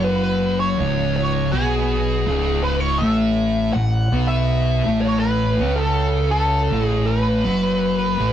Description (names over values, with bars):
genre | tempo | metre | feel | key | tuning
metal | 81 BPM | 4/4 | straight | unclear | A4 = 442 Hz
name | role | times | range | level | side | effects
fuzz lead guitar | melody | 0.0-8.3 s | G#4 to F#5 | -22 LUFS | right 1 dB | wah, distortion
thick fuzz guitar | riff | 0.0-8.3 s | C#2 to C#4 | -22 LUFS | left 2 dB | distortion
thick fuzz guitar | riff | 0.0-8.3 s | C#2 to C#4 | -24 LUFS | right 2 dB | distortion
growling fingered electric bass | bass | 0.0-8.3 s | C#1 to C#2 | -24 LUFS | equal | overdrive
room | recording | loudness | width
moderate small room reverb, RT60 0.5 s | rough rehearsal-room recording | -17 LUFS | side -10 dB against mid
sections
0.0-8.3 A section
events
none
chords
0.0 C#5; 3.0 A5